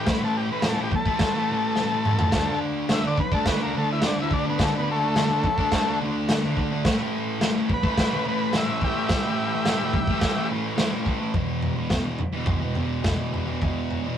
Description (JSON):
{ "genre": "garage rock duo or trio", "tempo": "106 BPM", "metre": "4/4", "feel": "straight", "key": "unclear", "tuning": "A4 = 440 Hz", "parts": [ { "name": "combo organ", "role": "melody", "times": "0.0-10.5 s", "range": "A3 to E5", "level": "-26 LUFS", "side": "left 2 dB", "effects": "none" }, { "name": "thick fuzz guitar", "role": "riff", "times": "0.0-14.2 s", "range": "E2 to D4", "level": "-26 LUFS", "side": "equal", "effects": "distortion" }, { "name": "crunchy breakbeat drum kit", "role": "drums", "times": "0.1-14.0 s", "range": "crash cymbal, kick drum, snare drum, toms", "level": "-25 LUFS", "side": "equal", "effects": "none" } ], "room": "moderate booth ambience, RT60 0.2 s", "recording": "rough rehearsal-room recording", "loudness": "-21 LUFS", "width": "side -9 dB against mid", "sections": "0.0-11.4 A section; 11.4-14.2 B section", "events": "transistor combo organ solo 0.0-11.4; drum fill 1.8-2.3", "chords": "0.0 A5; 2.3 D5; 6.9 A5; 11.4 E5" }